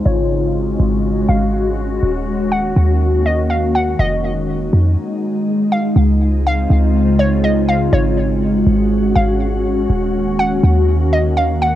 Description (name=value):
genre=hip hop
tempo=122 BPM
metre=4/4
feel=half-time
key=Eb dorian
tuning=A4 = 440 Hz
part: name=hollow square pluck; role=melody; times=0.0-11.8 s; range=Db5 to Gb5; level=-20 LUFS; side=equal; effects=chorus, low-pass filter, cassette tape, tape echo
part: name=glassy FM pad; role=sustained chords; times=0.0-11.8 s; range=Db3 to Gb4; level=-17 LUFS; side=left 1 dB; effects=ensemble chorus, built-in reverb, low-pass filter, cassette tape
part: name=clean 808-style bass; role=bass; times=0.1-11.8 s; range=Eb1 to F2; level=-16 LUFS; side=equal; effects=none
room=light reverb, digital ambience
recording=home recording on cassette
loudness=-13 LUFS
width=side -13 dB against mid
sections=0.0-6.0 A section; 6.0-11.8 B section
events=filter sweep 0.0-6.0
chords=0.1 Ab7sus4; 2.0 Ebm7; 4.0 Fm7; 6.0 Dbmaj7; 7.9 Ab7sus4; 9.9 Ebm7